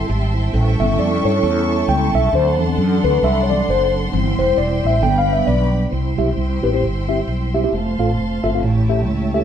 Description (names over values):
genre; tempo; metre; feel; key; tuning
uptempo gospel; 134 BPM; 4/4; swing 58% on 8ths; C major; A4 = 440 Hz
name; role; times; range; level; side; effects
mellow tonewheel organ; sustained chords; 0.0-9.4 s; F#3 to G5; -23 LUFS; right 2 dB; fast rotary speaker, chorus vibrato
warm studio string section; sustained chords; 0.0-9.4 s; B4 to C#6; -27 LUFS; right 1 dB; none
mellow fretless electric bass; bass; 0.0-9.4 s; E1 to G2; -19 LUFS; equal; none
mellow tine electric piano; accompaniment; 0.8-9.4 s; A2 to G5; -19 LUFS; left 2 dB; medium stereo tremolo
room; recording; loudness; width
moderate studio reverb, RT60 0.8 s; band playing live in one room; -15 LUFS; side -9 dB against mid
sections
0.0-5.9 A section; 5.9-9.4 B section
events
tine electric piano solo 0.0-5.9; tonewheel organ fill 8.6-9.4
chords
0.0 C6; 0.5 A7; 2.3 D7; 4.1 C; 5.0 G; 5.9 C; 7.7 F; 8.6 A7